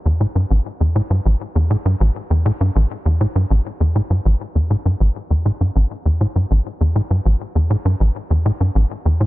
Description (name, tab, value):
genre	ambient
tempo	100 BPM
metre	4/4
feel	straight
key	unclear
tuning	A4 = 440 Hz
part	tight sequencer bass	solo	0.1-9.3 s	A1 to A2	-16 LUFS	equal	analog chorus, ping-pong delay
room	little or no reverb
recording	none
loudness	-16 LUFS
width	side -17 dB against mid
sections	0.0-9.3 A section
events	none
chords	none